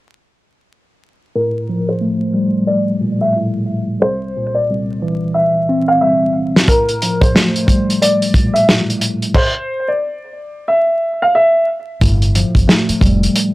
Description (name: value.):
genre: hip hop, boom-bap hip-hop.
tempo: 90 BPM.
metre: 4/4.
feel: swing 62% on 16ths.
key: G dorian.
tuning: A4 = 442 Hz.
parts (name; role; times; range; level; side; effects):
warm upright piano; melody; 1.4-11.6 s; Bb4 to F5; -16 LUFS; equal; high-pass filter, low-pass filter.
tine electric piano; accompaniment; 1.4-13.5 s; C2 to C4; -17 LUFS; equal; medium stereo tremolo, cassette tape, high-pass filter, low-pass filter.
warm soul drum kit; drums; 6.6-13.5 s; crash cymbal, hi-hat, kick drum, snare drum; -13 LUFS; equal; none.
deep dub fingered electric bass; bass; 12.0-13.3 s; F1 to G1; -14 LUFS; equal; none.
room: light reverb.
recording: dry, gritty hardware recording, vinyl crackle.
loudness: -12 LUFS.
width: side -18 dB against mid.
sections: 1.3-12.0 A section; 12.0-13.5 B section.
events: filter sweep 1.3-12.0; drum fill 5.3-6.7; stop 9.3-12.0.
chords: 1.3 Gm9; 4.0 C7; 6.7 Gm9; 9.3 N.C.; 12.0 G7sus2.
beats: | 1.35 2.01 2.68 3.35 | 4.01 4.68 5.35 6.01 | 6.68 7.35 8.01 8.68 | 9.35 10.01 10.68 11.35 | 12.01 12.68 13.35.